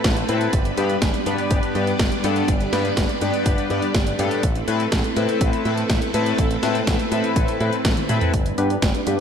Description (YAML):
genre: italo disco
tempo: 123 BPM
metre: 4/4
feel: straight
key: unclear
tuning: A4 = 441 Hz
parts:
  - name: string machine, full ensemble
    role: sustained chords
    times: 0.0-9.2 s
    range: G3 to D5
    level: -24 LUFS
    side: right 1 dB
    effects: ensemble chorus
  - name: picked electric bass with an envelope filter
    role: bass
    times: 0.0-9.2 s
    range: G1 to A2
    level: -25 LUFS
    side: equal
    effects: tube saturation, tape echo
  - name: electronic kick drum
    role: drums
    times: 0.0-8.9 s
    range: none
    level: -22 LUFS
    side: equal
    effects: none
  - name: house drum kit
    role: drums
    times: 0.0-9.2 s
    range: hi-hat, snare drum, toms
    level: -26 LUFS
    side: right 1 dB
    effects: gated reverb
  - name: chorused polysynth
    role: stabs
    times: 0.3-9.2 s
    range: G2 to B4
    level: -24 LUFS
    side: left 4 dB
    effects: tape echo
room: light reverb, digital ambience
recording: none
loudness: -18 LUFS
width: side -7 dB against mid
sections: 0.0-8.3 A section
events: drum fill 8.0-8.3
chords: 0.0 Amadd9; 0.5 G; 4.4 Amadd9; 8.3 G